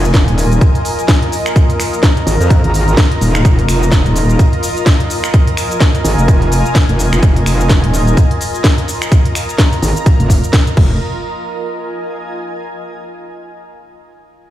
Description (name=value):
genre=bass house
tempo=127 BPM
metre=4/4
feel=swing 58% on 16ths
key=F minor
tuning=A4 = 440 Hz
part: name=metallic wobble bass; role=bass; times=0.0-11.0 s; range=Eb1 to F2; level=-12 LUFS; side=equal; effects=distortion, chorus, tube saturation, sidechain pumping
part: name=garage drum kit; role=drums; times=0.0-10.9 s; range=cabasa, crash cymbal, finger snaps, hi-hat, snare drum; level=-19 LUFS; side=left 1 dB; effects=none
part: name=granular cloud pad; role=texture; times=0.0-12.9 s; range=F4 to Bb5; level=-20 LUFS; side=equal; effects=built-in reverb, sidechain pumping
part: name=electronic kick drum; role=drums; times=0.1-10.9 s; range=none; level=-11 LUFS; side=equal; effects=none
room=little or no reverb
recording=played on a big sound system in a bare room, stone room reverb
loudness=-10 LUFS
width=side -13 dB against mid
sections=0.0-11.0 A section; 11.0-12.9 B section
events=none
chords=0.0 Fm; 10.8 Fsus4; 11.0 Fm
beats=0.14 0.61 1.08 | 1.56 2.03 2.50 2.98 | 3.45 3.92 4.39 4.87 | 5.34 5.81 6.28 6.75 | 7.23 7.70 8.17 8.64 | 9.12 9.59 10.06 10.53 | 11.01 11.48 11.95 12.42